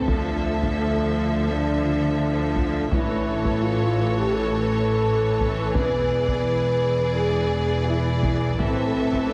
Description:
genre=cinematic, epic orchestral film score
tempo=85 BPM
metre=4/4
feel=straight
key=D minor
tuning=A4 = 440 Hz
part: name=clear symphonic violin section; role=melody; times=0.0-9.3 s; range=C#5 to E5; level=-35 LUFS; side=equal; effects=none
part: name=rich studio violin section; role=second line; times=0.0-9.3 s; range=G#4 to A4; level=-34 LUFS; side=equal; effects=none
part: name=rich symphonic viola section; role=accompaniment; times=0.0-9.3 s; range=E3 to F3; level=-33 LUFS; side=equal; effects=none
part: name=mellow French horn section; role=sustained chords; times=0.0-9.3 s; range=A3 to B4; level=-27 LUFS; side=equal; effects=none
part: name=clear symphonic cello section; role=bass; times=0.0-9.3 s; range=E2 to D3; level=-30 LUFS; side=equal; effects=none
part: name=rich symphonic double bass section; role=bass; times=0.0-9.3 s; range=E1 to D2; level=-30 LUFS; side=equal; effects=none
part: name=taiko ensemble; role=drums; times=0.1-9.3 s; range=none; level=-30 LUFS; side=equal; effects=none
room=moderate scoring stage reverb, RT60 2.0 s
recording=heavily compressed radio sound, multiband compression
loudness=-23 LUFS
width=mono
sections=0.0-9.3 A section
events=none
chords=0.1 Dmadd9; 2.9 A; 5.8 E7; 8.6 Am

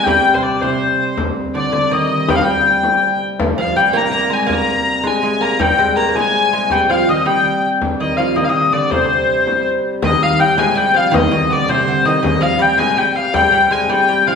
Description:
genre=medieval dance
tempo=108 BPM (dotted quarters)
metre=6/8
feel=straight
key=C minor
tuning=A4 = 440 Hz
part: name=warm hurdy-gurdy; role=melody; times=0.0-14.4 s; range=C5 to Bb5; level=-14 LUFS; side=left 3 dB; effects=none
part: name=lute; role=second line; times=0.0-14.4 s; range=C3 to Bb3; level=-20 LUFS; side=right 3 dB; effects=none
part: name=hand-pumped harmonium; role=drone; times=0.0-14.4 s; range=C3 to G3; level=-24 LUFS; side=left 1 dB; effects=none
part: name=frame drum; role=percussion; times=0.1-14.1 s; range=none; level=-23 LUFS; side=left 2 dB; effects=none
room=wet recital hall reverb, RT60 1.3 s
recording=recorded in a church or concert hall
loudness=-13 LUFS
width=side -6 dB against mid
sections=0.0-1.2 A section; 1.2-10.0 A section; 10.0-14.4 B section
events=none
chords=none

